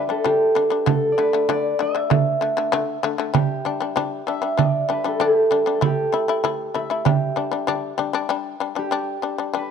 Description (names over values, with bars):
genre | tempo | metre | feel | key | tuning
mongolian traditional, Mongolian folk | 97 BPM | 4/4 | straight | G gong mode | A4 = 440 Hz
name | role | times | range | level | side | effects
concert harp | melody | 0.0-9.7 s | G4 to E5 | -21 LUFS | right 1 dB | none
shamisen | arpeggios | 0.0-9.7 s | D3 to E4 | -24 LUFS | left 10 dB | none
frame drum | percussion | 0.3-8.1 s | none | -22 LUFS | right 9 dB | none
room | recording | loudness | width
small room ambience | dry, close 1970s-style studio recording | -19 LUFS | side -7 dB against mid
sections
0.0-8.3 A section; 8.3-9.7 B section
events
none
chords
0.0 G5; 0.9 D5; 3.3 G5; 5.8 A5; 7.1 G5